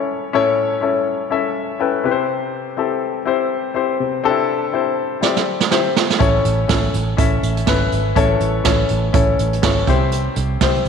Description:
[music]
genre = piano-driven pop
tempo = 123 BPM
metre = 4/4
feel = swing 56% on 16ths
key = unclear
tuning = A4 = 441 Hz
[part]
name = warm grand piano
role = accompaniment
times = 0.0-10.9 s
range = A2 to C6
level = -18 LUFS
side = left 6 dB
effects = none
[part]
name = jazz brush drum kit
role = drums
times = 5.2-10.9 s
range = hi-hat, kick drum, snare drum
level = -18 LUFS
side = right 6 dB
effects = none
[part]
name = vintage muted fingered electric bass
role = bass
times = 6.2-10.9 s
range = G#1 to C2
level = -20 LUFS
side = right 2 dB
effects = none
[sound]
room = wet echo chamber reverb, RT60 2.2 s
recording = 1960s-style stereo with parts hard left and right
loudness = -16 LUFS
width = side -6 dB against mid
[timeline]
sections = 0.0-10.9 A section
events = grand piano fill 1.6-2.3, 5.5-6.2; drum fill 5.2-6.2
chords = 0.0 A; 2.0 C; 6.2 A; 9.9 C

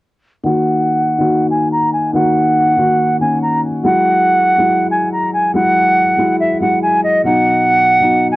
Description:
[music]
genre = hip hop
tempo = 141 BPM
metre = 4/4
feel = half-time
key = Eb phrygian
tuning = A4 = 440 Hz
[part]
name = reedy silver concert flute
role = melody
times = 0.4-8.4 s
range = Eb5 to Bb5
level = -13 LUFS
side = right 1 dB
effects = low-pass filter, cassette tape
[part]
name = felt-muted upright piano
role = accompaniment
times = 0.4-8.4 s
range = B2 to Gb4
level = -16 LUFS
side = left 1 dB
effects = low-pass filter, cassette tape
[sound]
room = light reverb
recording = home recording on cassette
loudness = -11 LUFS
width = side -19 dB against mid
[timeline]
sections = 0.4-8.4 A section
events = filter sweep 0.4-8.4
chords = 0.4 Ebm; 3.8 Eadd9; 7.3 B

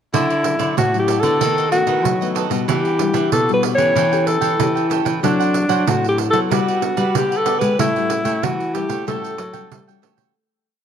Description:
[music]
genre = samba and choro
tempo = 94 BPM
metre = 4/4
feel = straight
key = unclear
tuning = A4 = 440 Hz
[part]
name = breathy alto saxophone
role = melody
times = 0.1-10.0 s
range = D4 to C#5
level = -19 LUFS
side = left 1 dB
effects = none
[part]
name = cavaquinho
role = accompaniment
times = 0.1-10.3 s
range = D4 to G5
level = -26 LUFS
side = right 14 dB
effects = none
[part]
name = nylon-string guitar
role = accompaniment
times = 0.1-10.3 s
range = A2 to A4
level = -26 LUFS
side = left 13 dB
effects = none
[part]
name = nylon-string guitar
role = bass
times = 0.1-10.3 s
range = A2 to A3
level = -22 LUFS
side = left 1 dB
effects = none
[part]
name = pandeiro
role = percussion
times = 0.1-10.3 s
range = none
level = -24 LUFS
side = right 10 dB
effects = none
[sound]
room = light reverb, small room reverb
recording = 1960s-style stereo with parts hard left and right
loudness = -16 LUFS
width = side -8 dB against mid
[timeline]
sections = 0.1-10.4 A section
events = fade-out 7.8-10.4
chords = 0.1 Dmaj9; 1.4 B7/D#; 2.7 Em9; 4.0 A7/E; 5.2 D7/F#; 6.5 Gmaj7; 7.8 A6

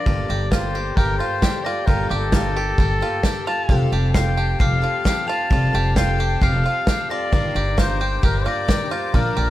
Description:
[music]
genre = indie folk with a building arrangement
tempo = 132 BPM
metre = 4/4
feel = straight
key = unclear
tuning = A4 = 440 Hz
[part]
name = mellow trumpet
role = melody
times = 0.0-9.5 s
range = A4 to A5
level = -25 LUFS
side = left 1 dB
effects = tape echo
[part]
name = glockenspiel with soft plastic mallets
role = second line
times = 0.0-9.5 s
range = D6 to F7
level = -30 LUFS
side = left 5 dB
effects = tape echo
[part]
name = felt-muted upright piano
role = accompaniment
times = 0.0-9.5 s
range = F1 to D5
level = -34 LUFS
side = right 6 dB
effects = tape echo
[part]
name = picked plugged-in twelve-string acoustic guitar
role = accompaniment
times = 0.0-9.5 s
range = G2 to Bb4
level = -30 LUFS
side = left 7 dB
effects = none
[part]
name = warm chamber string section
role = sustained chords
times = 0.0-9.5 s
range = G4 to D6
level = -34 LUFS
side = left 6 dB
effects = none
[part]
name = bluegrass banjo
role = arpeggios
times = 0.0-9.5 s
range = F4 to G4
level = -28 LUFS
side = right 5 dB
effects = tape echo
[part]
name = upright bass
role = bass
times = 0.1-9.5 s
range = F1 to Bb1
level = -22 LUFS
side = equal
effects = none
[part]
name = natural country drum kit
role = drums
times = 0.1-9.2 s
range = kick drum, snare drum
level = -20 LUFS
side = equal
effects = none
[sound]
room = little or no reverb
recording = echo-heavy mix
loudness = -17 LUFS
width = side -14 dB against mid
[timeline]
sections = 0.0-9.5 A section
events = none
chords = 0.1 Gmadd9; 3.7 Fadd9; 7.3 Ebmaj7/G

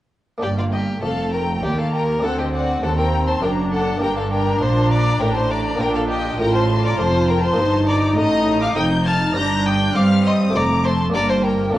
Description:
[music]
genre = classical, baroque-style concerto movement with solo episodes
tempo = 101 BPM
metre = 3/4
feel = straight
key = G minor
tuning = A4 = 440 Hz
[part]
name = rich chamber violin section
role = melody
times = 0.4-11.8 s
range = F5 to Bb6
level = -28 LUFS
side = left 2 dB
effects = none
[part]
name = rich violin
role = melody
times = 0.4-11.8 s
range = F4 to Bb5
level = -23 LUFS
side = left 1 dB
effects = none
[part]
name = rich chamber violin section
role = second line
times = 0.4-11.8 s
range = D5 to G6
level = -27 LUFS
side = left 2 dB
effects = none
[part]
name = buff-stop harpsichord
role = accompaniment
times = 0.4-11.8 s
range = D2 to C5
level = -29 LUFS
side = equal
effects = none
[part]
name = warm symphonic viola section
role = accompaniment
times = 0.4-11.8 s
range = A3 to F4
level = -24 LUFS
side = equal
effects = none
[part]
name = rich chamber cello section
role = bass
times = 0.4-11.8 s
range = D2 to G3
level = -22 LUFS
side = right 1 dB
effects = none
[part]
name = warm chamber double bass section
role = bass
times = 0.4-11.8 s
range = F1 to G2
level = -24 LUFS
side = right 2 dB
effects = none
[sound]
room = wet recital hall reverb, RT60 1.4 s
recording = worn, warbling old tape, cassette tape, warbly pitch drift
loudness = -16 LUFS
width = side -14 dB against mid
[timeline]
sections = 0.4-11.8 A section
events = none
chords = 0.4 Gm; 2.2 D7; 4.0 Gm; 5.8 Bbmaj13; 7.6 Eb/G; 9.4 Cm/G; 10.6 F; 11.1 Gm

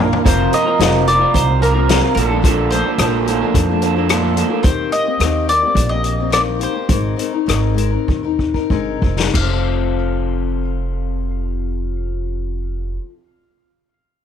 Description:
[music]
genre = folk rock and heartland rock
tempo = 92-109 BPM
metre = 4/4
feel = straight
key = F mixolydian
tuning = A4 = 440 Hz
[part]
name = picked steel-string acoustic guitar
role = accompaniment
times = 0.0-13.2 s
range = F2 to Bb4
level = -22 LUFS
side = left 11 dB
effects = none
[part]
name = electric guitar through a small old amp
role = riff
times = 0.0-4.6 s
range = Bb2 to Bb4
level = -18 LUFS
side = right 13 dB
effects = wide subtle chorus
[part]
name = upright bass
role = bass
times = 0.0-13.0 s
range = F1 to F2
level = -20 LUFS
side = right 1 dB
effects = none
[part]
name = vintage drum kit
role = drums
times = 0.1-9.5 s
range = crash cymbal, hi-hat, kick drum, rim click, snare drum, toms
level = -19 LUFS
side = left 2 dB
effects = none
[part]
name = bowl-back mandolin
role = melody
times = 0.3-13.0 s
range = A4 to F5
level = -20 LUFS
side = left 1 dB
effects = tape echo
[sound]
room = studio reverb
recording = 1960s-style stereo with parts hard left and right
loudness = -14 LUFS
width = side -8 dB against mid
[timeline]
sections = 0.2-9.3 A section; 9.3-11.9 B section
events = drum fill 0.0, 8.1-9.3; slowing down 4.6-9.3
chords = 0.2 Fsus4; 2.2 Bbmaj7; 4.6 Eb6; 6.9 Abadd9; 9.3 F

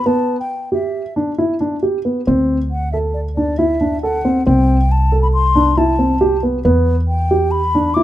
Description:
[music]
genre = contemporary instrumental, contemporary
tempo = 137 BPM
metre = 5/4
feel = straight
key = D mixolydian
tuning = A4 = 441 Hz
[part]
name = mellow hollow concert flute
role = melody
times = 0.0-8.0 s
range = D5 to D6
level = -20 LUFS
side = left 3 dB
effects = none
[part]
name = dark baby grand piano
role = arpeggios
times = 0.1-8.0 s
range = B3 to A4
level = -16 LUFS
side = right 1 dB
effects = none
[part]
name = upright bass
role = bass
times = 2.3-8.0 s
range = C2 to E2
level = -18 LUFS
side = equal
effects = none
[sound]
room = light reverb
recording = close, detailed microphones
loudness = -14 LUFS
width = side -13 dB against mid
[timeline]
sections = 0.0-8.0 A section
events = none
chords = 0.0 Em7; 2.3 D7; 4.5 Am7/C; 6.6 Em

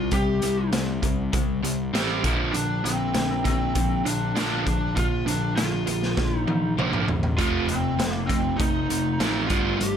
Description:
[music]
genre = classic rock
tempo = 99 BPM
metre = 4/4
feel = straight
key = unclear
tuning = A4 = 442 Hz
[part]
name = lead guitar through a small cranked amp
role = melody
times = 0.0-10.0 s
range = C4 to G4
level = -27 LUFS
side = equal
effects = overdrive
[part]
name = crunchy overdriven guitar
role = riff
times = 0.0-10.0 s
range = Bb2 to D4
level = -29 LUFS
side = right 10 dB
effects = none
[part]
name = distorted electric guitar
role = riff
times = 0.0-10.0 s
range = F2 to C4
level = -30 LUFS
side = left 12 dB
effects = distortion
[part]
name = fuzz picked electric bass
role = bass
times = 0.0-10.0 s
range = F1 to C2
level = -29 LUFS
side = left 1 dB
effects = overdrive
[part]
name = raw garage drum kit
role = drums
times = 0.1-9.9 s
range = hi-hat, kick drum, snare drum, toms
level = -27 LUFS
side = equal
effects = none
[sound]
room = light reverb, small room reverb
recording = none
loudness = -22 LUFS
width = side -8 dB against mid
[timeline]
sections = 0.0-10.0 A section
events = drum fill 6.2-7.4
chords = 0.0 C5; 2.2 Bb; 7.4 F

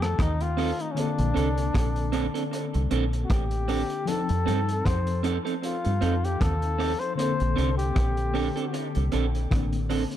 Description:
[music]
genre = lovers rock reggae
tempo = 77 BPM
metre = 4/4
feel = swing 56% on 16ths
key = Bb major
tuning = A4 = 442 Hz
[part]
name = breathy flugelhorn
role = melody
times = 0.0-8.9 s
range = Db4 to C5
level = -31 LUFS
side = left 4 dB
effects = tape echo
[part]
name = FM electric piano with tremolo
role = accompaniment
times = 0.0-10.2 s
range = D3 to A4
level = -32 LUFS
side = left 5 dB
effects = tape echo
[part]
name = deep dub fingered electric bass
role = bass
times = 0.0-10.0 s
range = A1 to G2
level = -26 LUFS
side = equal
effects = none
[part]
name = crunchy breakbeat drum kit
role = drums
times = 0.0-10.2 s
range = hi-hat, kick drum, rim click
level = -30 LUFS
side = equal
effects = tape echo
[part]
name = electric guitar through a small old amp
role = stabs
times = 0.6-10.0 s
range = C4 to A4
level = -31 LUFS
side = right 8 dB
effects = spring reverb, tape echo
[sound]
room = studio reverb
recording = dark, warm production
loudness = -23 LUFS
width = side -11 dB against mid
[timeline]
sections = 0.0-10.2 A section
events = flugelhorn solo 0.0-10.2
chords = 0.0 F7; 1.0 Bbmaj9; 4.1 F7; 7.2 Bbmaj9

